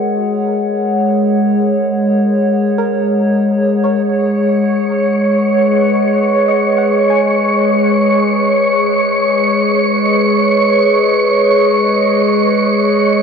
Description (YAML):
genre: ambient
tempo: free time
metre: none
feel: none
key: G# minor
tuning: A4 = 439 Hz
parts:
  - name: warbly tape-like pad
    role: sustained chords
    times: 0.0-13.2 s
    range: G#3 to F#5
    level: -12 LUFS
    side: equal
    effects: chorus, built-in reverb
  - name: soft round pluck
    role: arpeggios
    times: 0.0-10.7 s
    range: F#4 to G#5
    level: -28 LUFS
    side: right 3 dB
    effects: wide subtle chorus, diffuse ambient delay
  - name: wind-like tuned noise texture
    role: texture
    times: 4.5-13.2 s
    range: C#5 to C#6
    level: -16 LUFS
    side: right 1 dB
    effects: built-in reverb
room: wet cathedral reverb, RT60 6.9 s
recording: none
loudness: -11 LUFS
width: side -6 dB against mid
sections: 0.0-13.2 A section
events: fade-out on synth pluck 0.0-13.2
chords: 0.0 G#m7